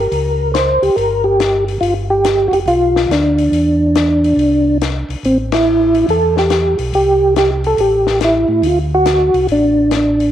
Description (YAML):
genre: soul jazz organ trio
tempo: 141 BPM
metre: 4/4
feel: swing 66% on 8ths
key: unclear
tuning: A4 = 440 Hz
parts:
  - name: percussive tonewheel organ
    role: melody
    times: 0.0-10.3 s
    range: C4 to C5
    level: -12 LUFS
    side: equal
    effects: slow rotary speaker, chorus vibrato, slapback echo
  - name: mellow tonewheel organ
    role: bass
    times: 0.0-10.3 s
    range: F1 to A2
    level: -19 LUFS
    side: equal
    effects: slow rotary speaker
  - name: compact cocktail drum kit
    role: drums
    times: 0.1-10.3 s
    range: hi-hat, ride cymbal, snare drum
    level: -23 LUFS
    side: left 9 dB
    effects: none
room: wet spring reverb, RT60 1.9 s, studio reverb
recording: 1960s-style stereo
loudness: -11 LUFS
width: side -11 dB against mid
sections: 0.0-10.3 A section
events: band accent 5.4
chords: 0.1 Gdim; 1.8 G7; 3.5 Cadd9; 5.2 Am7; 8.6 D7